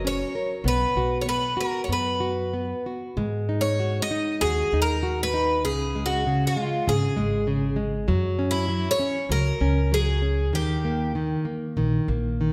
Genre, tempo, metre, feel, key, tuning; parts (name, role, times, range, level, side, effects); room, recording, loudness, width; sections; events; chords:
fado-style ballad; 97 BPM; 4/4; rubato; A4 = 440 Hz
picked twelve-string acoustic guitar; melody; 0.0-11.1 s; E4 to D#5; -28 LUFS; equal
nylon-string guitar; accompaniment; 0.0-12.5 s; C#3 to A#4; -29 LUFS; equal
upright bass; bass; 0.0-12.5 s; F#1 to G#2; -29 LUFS; equal
moderate scoring stage reverb, RT60 1.8 s; -25 LUFS; mono
0.0-3.2 A section; 3.2-12.5 B section
0.0 F#; 0.6 B5; 3.2 G#5; 5.7 C#5; 8.1 F#; 10.5 D#